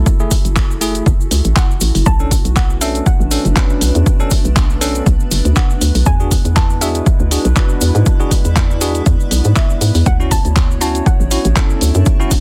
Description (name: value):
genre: deep house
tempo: 120 BPM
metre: 4/4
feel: swing 55% on 16ths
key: unclear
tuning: A4 = 440 Hz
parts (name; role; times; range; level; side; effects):
- warbly tape-like pad; sustained chords; 0.0-12.4 s; G#3 to C#5; -30 LUFS; equal; chorus, built-in reverb, vintage 12-bit sampler grit, sidechain pumping
- bell-like tine electric piano; stabs; 0.0-12.3 s; A3 to B4; -24 LUFS; equal; sidechain pumping, tape echo
- hollow knocking FM bass; bass; 0.0-12.0 s; F#1 to G#2; -17 LUFS; equal; sidechain pumping
- granular cloud pad; texture; 0.5-12.4 s; D4 to B5; -32 LUFS; equal; none
- deep house drum kit; drums; 0.1-12.4 s; handclaps, hi-hat; -24 LUFS; equal; overdrive
- electronic kick drum; drums; 0.1-12.4 s; none; -16 LUFS; equal; overdrive
- cabasa; percussion; 0.1-12.4 s; none; -28 LUFS; equal; none
- soft round pluck; melody; 1.6-11.8 s; E5 to A5; -28 LUFS; equal; chorus, tape echo
room: digital ambience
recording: dense, heavily limited modern master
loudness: -14 LUFS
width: mono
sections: 0.0-12.4 A section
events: none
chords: 0.0 F#m9; 2.1 Bm7; 6.1 E7; 10.1 Dmaj7